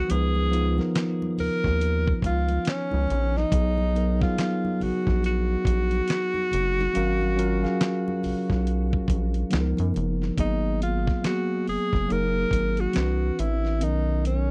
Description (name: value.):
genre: R&B, neo-soul.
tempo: 70 BPM.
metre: 4/4.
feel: swing 60% on 16ths.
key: unclear.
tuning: A4 = 439 Hz.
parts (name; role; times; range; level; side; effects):
breathy tenor saxophone; melody; 0.0-14.5 s; C#4 to A#4; -30 LUFS; equal; none.
mellow tine electric piano; accompaniment; 0.0-14.5 s; D#3 to E#5; -30 LUFS; equal; none.
rubbery square bass; bass; 0.0-14.5 s; F#1 to F#2; -28 LUFS; equal; none.
dusty soul sampler-style drum kit; drums; 0.1-14.5 s; handclaps, hi-hat, kick drum, snare drum; -29 LUFS; equal; none.
congas; percussion; 0.1-10.4 s; none; -42 LUFS; equal; none.
room: little or no reverb.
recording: dry, close 1970s-style studio recording.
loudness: -25 LUFS.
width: mono.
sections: 0.0-10.4 A section; 10.4-14.5 B section.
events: none.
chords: 0.0 C#13; 3.5 B6; 6.9 G#13sus4; 9.5 C#13; 10.4 G#m9; 12.1 F#69; 12.9 Cmaj9; 13.8 Bmaj9.